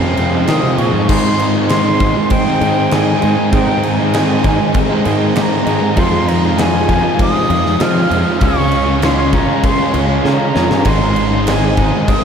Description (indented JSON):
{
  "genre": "rock, shoegaze and dream pop",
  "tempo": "98 BPM",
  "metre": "4/4",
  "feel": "straight",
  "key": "unclear",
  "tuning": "A4 = 440 Hz",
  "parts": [
    { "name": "breathy bright silver concert flute", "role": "melody", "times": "0.0-12.2 s", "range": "F5 to F6", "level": "-20 LUFS", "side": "equal", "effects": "ping-pong delay" },
    { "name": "phased string machine", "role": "sustained chords", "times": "0.0-12.2 s", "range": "Ab3 to F5", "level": "-23 LUFS", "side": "left 1 dB", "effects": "none" },
    { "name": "twelve-string electric guitar", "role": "arpeggios", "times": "0.0-12.2 s", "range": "Eb3 to G4", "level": "-26 LUFS", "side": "right 6 dB", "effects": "none" },
    { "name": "overdriven electric guitar", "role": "riff", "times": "0.0-12.2 s", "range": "F2 to F4", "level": "-19 LUFS", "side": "right 7 dB", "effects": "reverse reverb" },
    { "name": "overdriven electric guitar", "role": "riff", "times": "0.0-12.2 s", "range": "F2 to Db4", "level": "-22 LUFS", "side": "equal", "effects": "none" },
    { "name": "thick fuzz guitar", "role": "riff", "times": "0.0-12.2 s", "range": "F2 to Db4", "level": "-20 LUFS", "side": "left 9 dB", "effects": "distortion, lush chorus" },
    { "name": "modern bright picked electric bass", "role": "bass", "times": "0.0-11.9 s", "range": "Ab1 to F3", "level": "-18 LUFS", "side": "equal", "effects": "none" },
    { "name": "huge arena drum kit", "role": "drums", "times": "0.2-12.2 s", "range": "crash cymbal, kick drum, snare drum", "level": "-18 LUFS", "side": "equal", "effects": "none" }
  ],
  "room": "moderate huge ambient reverb, RT60 4.7 s",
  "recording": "dreamy mix soaked in reverb",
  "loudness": "-11 LUFS",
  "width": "side -7 dB against mid",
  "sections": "0.0-1.1 A section; 1.1-12.2 A section",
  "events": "drum fill 10.2-10.9",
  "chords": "0.0 Fm7; 1.1 Abmaj7; 6.0 Fm7; 8.4 Db; 10.9 Ab"
}